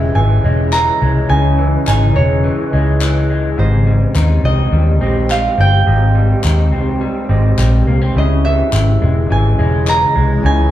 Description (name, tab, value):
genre	indie pop, bedroom pop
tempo	105 BPM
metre	4/4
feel	straight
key	unclear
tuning	A4 = 440 Hz
part	concert harp	melody	0.0-10.7 s	C5 to Bb5	-19 LUFS	right 3 dB	none
part	barky tine electric piano	accompaniment	0.0-10.7 s	Ab3 to Fb5	-24 LUFS	right 3 dB	none
part	electric guitar through a small old amp	accompaniment	0.0-10.7 s	Ab2 to Eb4	-21 LUFS	left 3 dB	vibrato effect
part	shimmering ambient pad	sustained chords	0.0-10.7 s	Db3 to G4	-22 LUFS	equal	chorus, built-in reverb
part	vintage muted fingered electric bass	bass	0.0-10.7 s	Fb1 to Eb2	-13 LUFS	equal	none
part	group handclap	percussion	0.7-10.0 s	none	-25 LUFS	left 4 dB	none
room	wet large studio reverb, RT60 0.9 s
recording	band playing live in one room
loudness	-11 LUFS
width	side -13 dB against mid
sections	0.0-10.7 A section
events	none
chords	0.0 Dbmadd9; 3.6 Abmaj7; 8.2 Dbmadd9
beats	0.16 0.73 | 1.30 1.87 2.44 3.02 | 3.59 4.16 4.73 5.30 | 5.87 6.44 7.01 7.58 | 8.15 8.73 9.30 9.87 | 10.44